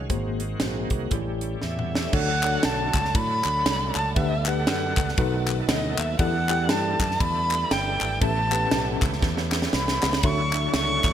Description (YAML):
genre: uptempo gospel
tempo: 118 BPM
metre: 4/4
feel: swing 60% on 8ths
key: D major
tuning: A4 = 444 Hz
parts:
  - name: bright tonewheel organ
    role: sustained chords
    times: 0.0-11.1 s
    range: D3 to C#5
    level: -32 LUFS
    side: right 4 dB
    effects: slow rotary speaker, overdrive, chorus vibrato
  - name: fingered electric bass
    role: bass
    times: 0.0-11.1 s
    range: G1 to A2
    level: -29 LUFS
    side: equal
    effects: none
  - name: mellow tine electric piano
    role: accompaniment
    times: 0.1-11.1 s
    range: Ab2 to G5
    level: -29 LUFS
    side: left 3 dB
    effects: medium stereo tremolo
  - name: crisp fusion drum kit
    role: drums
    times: 0.1-11.1 s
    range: crash cymbal, hi-hat, kick drum, ride cymbal, snare drum, toms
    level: -26 LUFS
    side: equal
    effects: gated reverb
  - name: dark erhu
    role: melody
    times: 1.6-11.1 s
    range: D#5 to C#6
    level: -26 LUFS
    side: equal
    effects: digital delay
  - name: group handclap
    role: percussion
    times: 2.4-11.1 s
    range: none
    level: -31 LUFS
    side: left 5 dB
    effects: none
room: light reverb, small room ambience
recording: bright 1980s-style digital production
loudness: -21 LUFS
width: side -10 dB against mid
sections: 0.0-2.1 A section; 2.1-11.1 B section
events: drum fill 1.6-2.1, 9.2-10.2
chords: 0.1 Ab9; 1.1 A7; 2.1 Dmaj7; 4.2 Gmaj9/D; 5.2 B7; 6.2 Em11; 8.2 A9; 10.2 Dmaj9